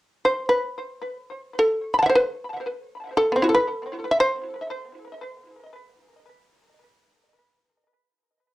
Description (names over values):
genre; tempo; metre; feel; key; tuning
japanese traditional; free time; none; none; unclear; A4 = 443 Hz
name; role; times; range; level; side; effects
shamisen; melody; 0.2-6.6 s; B3 to B5; -21 LUFS; equal; tape echo
room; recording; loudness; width
wet studio ambience, RT60 0.5 s; worn, warbling old tape, cassette tape, warbly pitch drift; -20 LUFS; side -17 dB against mid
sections
0.0-8.5 A section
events
none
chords
none